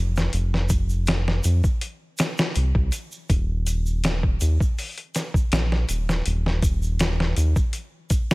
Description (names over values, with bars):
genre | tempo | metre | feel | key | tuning
trip hop | 81 BPM | 4/4 | straight | unclear | A4 = 441 Hz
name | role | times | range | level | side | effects
round analog bass | bass | 0.0-7.5 s | Eb1 to F2 | -22 LUFS | equal | none
dusty soul sampler-style drum kit | drums | 0.2-8.3 s | hi-hat, kick drum, snare drum | -23 LUFS | equal | none
tube shaker | percussion | 0.2-8.3 s | none | -38 LUFS | right 2 dB | none
room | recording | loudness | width
digital ambience | none | -21 LUFS | side -24 dB against mid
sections
0.0-8.3 A section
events
none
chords
none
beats
| 0.33 1.07 1.81 2.56 | 3.30 4.04 4.78 5.52 | 6.26 7.00 7.74